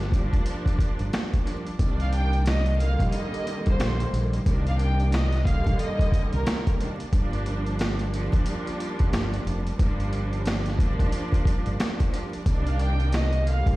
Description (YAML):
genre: hip hop, boom-bap hip-hop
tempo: 90 BPM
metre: 4/4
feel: swing 62% on 16ths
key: C minor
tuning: A4 = 441 Hz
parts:
  - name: rich symphonic string section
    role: accompaniment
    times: 0.0-13.8 s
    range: C2 to D4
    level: -31 LUFS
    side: right 1 dB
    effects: high-pass filter, low-pass filter
  - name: deep dub fingered electric bass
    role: bass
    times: 0.0-13.8 s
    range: F1 to C2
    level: -25 LUFS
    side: equal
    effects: none
  - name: boom bap sampler-style drum kit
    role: drums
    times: 0.0-13.8 s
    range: hi-hat, kick drum, snare drum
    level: -25 LUFS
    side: equal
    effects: none
  - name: clear studio violin section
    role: melody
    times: 2.0-6.6, 12.7-13.8 s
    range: Bb4 to G5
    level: -32 LUFS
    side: right 1 dB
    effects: high-pass filter, low-pass filter
room: digital ambience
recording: played on a big sound system in a bare room, large studio reverb, vinyl crackle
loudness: -22 LUFS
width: side -18 dB against mid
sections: 0.0-1.8 A section; 1.8-13.8 B section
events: none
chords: 0.0 Gm7; 1.8 Cm9; 7.1 Gm7; 12.5 Cm9